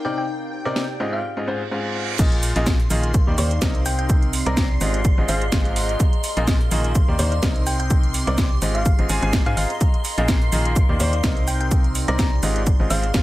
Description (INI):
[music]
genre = piano house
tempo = 126 BPM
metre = 4/4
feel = swing 55% on 16ths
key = Bb mixolydian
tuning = A4 = 440 Hz
[part]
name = thumb-piano-like synth pluck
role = melody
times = 0.0-13.2 s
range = D5 to Bb5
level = -30 LUFS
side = left 1 dB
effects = chorus, tape echo
[part]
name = string machine, violins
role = sustained chords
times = 0.0-13.2 s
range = G5 to C6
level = -33 LUFS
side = equal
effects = ensemble chorus, sidechain pumping
[part]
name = clear upright piano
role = riff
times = 0.0-13.2 s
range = Ab2 to Ab5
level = -26 LUFS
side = equal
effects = sidechain pumping
[part]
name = warbly tape-like pad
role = texture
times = 0.0-13.2 s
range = C4 to D6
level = -31 LUFS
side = equal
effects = chorus, built-in reverb, sidechain pumping
[part]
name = house drum kit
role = drums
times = 0.8-13.2 s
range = crash cymbal, hi-hat, snare drum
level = -26 LUFS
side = right 1 dB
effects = none
[part]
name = reverse cymbal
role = sound effects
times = 1.5-2.2 s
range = none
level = -31 LUFS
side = right 7 dB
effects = none
[part]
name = organ-like FM bass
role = bass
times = 2.2-13.2 s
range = Ab1 to Ab2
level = -23 LUFS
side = equal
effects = sidechain pumping
[part]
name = breakbeat sampler-style drum kit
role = drums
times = 2.2-13.2 s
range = hi-hat, shaker, snare drum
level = -35 LUFS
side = left 1 dB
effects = sidechain pumping on perc, high-pass filter on perc, sidechain pumping on hats, high-pass filter on hats, high-pass filter on snare
[part]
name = electronic kick drum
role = drums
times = 2.2-13.2 s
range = none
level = -19 LUFS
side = equal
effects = none
[sound]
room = digital ambience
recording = none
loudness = -18 LUFS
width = side -16 dB against mid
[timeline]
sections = 0.0-2.2 A section; 2.2-13.2 B section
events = filter sweep on drum 0.0-2.2; reverse cymbal 1.5-2.2; drop 2.2-13.2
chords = 0.0 Cm9; 1.0 Ab6; 2.2 Bb7sus4; 3.1 Ebmaj7; 3.9 Cm9; 4.8 Ab6; 6.0 Bb7sus4; 7.0 Ebmaj7; 7.7 Cm9; 8.6 Ab6; 9.8 Bb7sus4; 10.8 Ebmaj7; 11.5 Cm9; 12.4 Ab6